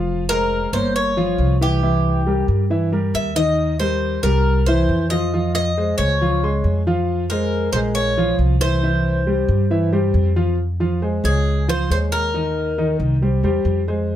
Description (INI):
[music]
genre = latin, Cuban son and guajira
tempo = 137 BPM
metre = 4/4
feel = straight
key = unclear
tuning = A4 = 441 Hz
[part]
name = warm grand piano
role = arpeggios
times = 0.0-14.2 s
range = Eb3 to C6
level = -21 LUFS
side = equal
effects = none
[part]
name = upright bass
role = bass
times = 0.0-14.2 s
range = F1 to G2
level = -20 LUFS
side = equal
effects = none
[part]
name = Cuban tres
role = melody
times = 0.3-13.0 s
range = G4 to E5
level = -22 LUFS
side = left 1 dB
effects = none
[sound]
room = light reverb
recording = none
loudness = -16 LUFS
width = side -11 dB against mid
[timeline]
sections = 0.0-10.6 A section; 10.6-14.2 B section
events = none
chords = 0.1 Fmadd9; 0.9 Gm7b5; 1.8 C7; 3.6 Eb; 4.5 C7; 5.3 Dbmaj7; 7.1 Fm; 8.0 Bbm7; 8.8 C; 10.6 Fm; 11.5 Db; 12.3 Eb5; 13.2 C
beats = | 0.07 0.51 0.95 1.39 | 1.83 2.27 2.70 3.14 | 3.58 4.02 4.46 4.89 | 5.33 5.77 6.21 6.64 | 7.08 7.52 7.96 8.40 | 8.83 9.27 9.71 10.15 | 10.59 11.03 11.46 11.90 | 12.34 12.78 13.22 13.66 | 14.10